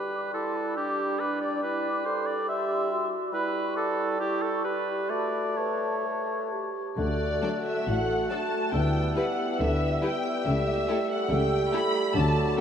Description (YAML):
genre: quick classical-period movement for symphony orchestra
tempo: 125-142 BPM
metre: 4/4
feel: rubato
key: D major from 3.3 s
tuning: A4 = 440 Hz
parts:
  - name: mellow clarinet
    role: second line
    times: 0.0-12.6 s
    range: D4 to B4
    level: -34 LUFS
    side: right 3 dB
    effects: none
  - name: mellow hollow large flute ensemble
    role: second line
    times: 0.0-6.7 s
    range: A5 to D6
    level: -36 LUFS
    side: left 2 dB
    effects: none
  - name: warm oboe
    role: second line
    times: 0.0-12.6 s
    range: G4 to F#5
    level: -32 LUFS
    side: right 2 dB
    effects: none
  - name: mellow bassoon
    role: accompaniment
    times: 0.0-12.6 s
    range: F#3 to A3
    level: -33 LUFS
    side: left 2 dB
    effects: none
  - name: warm symphonic violin section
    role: melody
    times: 7.0-12.6 s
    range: D5 to B5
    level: -31 LUFS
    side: left 1 dB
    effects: none
  - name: clear French horn section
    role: sustained chords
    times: 7.0-12.6 s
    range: A3 to G4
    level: -31 LUFS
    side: right 1 dB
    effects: none
  - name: rich chamber double bass section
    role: bass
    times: 7.0-12.5 s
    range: A1 to D2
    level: -30 LUFS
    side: left 1 dB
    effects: none
  - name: warm chamber cello section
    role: bass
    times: 7.0-12.5 s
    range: A2 to D3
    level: -31 LUFS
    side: left 1 dB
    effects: none
  - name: timpani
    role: percussion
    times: 7.0-7.6, 12.1-12.6 s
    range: D3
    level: -37 LUFS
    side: right 2 dB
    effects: none
  - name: rich chamber violin section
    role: second line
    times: 7.4-12.6 s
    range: G4 to D5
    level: -38 LUFS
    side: equal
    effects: none
  - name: rich chamber viola section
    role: accompaniment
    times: 7.4-12.6 s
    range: F#3 to E4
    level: -37 LUFS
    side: left 3 dB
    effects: none
room: wet cathedral reverb, RT60 5.1 s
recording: in a vast, echoing space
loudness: -25 LUFS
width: side -8 dB against mid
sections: 0.0-7.0 A section; 7.0-12.6 B section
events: none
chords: 0.0 G; 5.1 A; 7.0 D; 8.7 Em7/D; 10.5 A7/C#